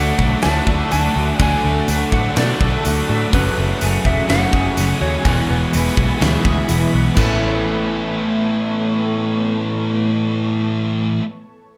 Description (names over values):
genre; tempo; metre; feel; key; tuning
rock, shoegaze and dream pop; 125 BPM; 4/4; straight; A major; A4 = 441 Hz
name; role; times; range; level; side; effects
mellow electric guitar; melody; 0.0-11.1 s; A4 to A5; -27 LUFS; equal; slapback echo
shimmering ambient pad; sustained chords; 0.0-11.2 s; B3 to D6; -31 LUFS; equal; chorus, built-in reverb
electric guitar at the edge of break-up; arpeggios; 0.0-11.2 s; E3 to A4; -31 LUFS; equal; ensemble chorus, slapback echo
overdriven electric guitar; riff; 0.0-11.2 s; E2 to D4; -27 LUFS; equal; none
semi-hollow electric guitar; riff; 0.0-11.2 s; E2 to G#4; -28 LUFS; equal; reverse reverb
thick fuzz guitar; riff; 0.0-11.2 s; E2 to D4; -24 LUFS; equal; distortion, ensemble chorus
vintage muted fingered electric bass; bass; 0.0-11.2 s; E1 to B2; -23 LUFS; equal; none
huge arena drum kit; drums; 0.2-7.3 s; crash cymbal, hi-hat, kick drum, snare drum; -24 LUFS; equal; none
tambourine; percussion; 0.9-7.4 s; none; -34 LUFS; equal; none
room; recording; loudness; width
moderate small room reverb, RT60 0.6 s; none; -18 LUFS; mono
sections
0.0-7.2 A section; 7.2-11.0 B section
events
none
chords
0.0 D; 3.3 F#madd9; 5.3 E; 7.2 Aadd9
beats
0.44 0.92 | 1.40 1.88 2.37 2.85 | 3.33 3.81 4.29 4.77 | 5.25 5.74 6.22 6.70 | 7.18 7.66 8.14 8.62 | 9.11 9.59 10.07 10.55